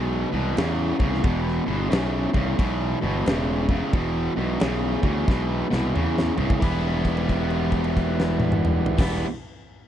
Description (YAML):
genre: blues rock power trio and southern rock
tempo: 89 BPM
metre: 4/4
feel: swing 63% on 8ths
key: E minor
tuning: A4 = 440 Hz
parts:
  - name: overdriven electric guitar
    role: riff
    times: 0.0-9.3 s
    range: E2 to E4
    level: -24 LUFS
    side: equal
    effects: none
  - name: fuzz fingered electric bass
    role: bass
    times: 0.0-9.2 s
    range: E1 to E2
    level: -26 LUFS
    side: equal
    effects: overdrive
  - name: huge arena drum kit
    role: drums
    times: 0.6-9.1 s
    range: crash cymbal, kick drum, snare drum, toms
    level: -25 LUFS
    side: equal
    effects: vintage 12-bit sampler grit
room: studio ambience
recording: dry, close 1970s-style studio recording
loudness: -21 LUFS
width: side -10 dB against mid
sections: 0.0-6.6 A section; 6.6-9.3 B section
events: drum fill 5.3-6.6; held note 6.6-8.9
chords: 0.0 E5; 6.6 Em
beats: 0.58 | 1.25 1.93 2.60 3.27 | 3.94 4.62 5.29 5.96 | 6.63 7.30 7.97 8.64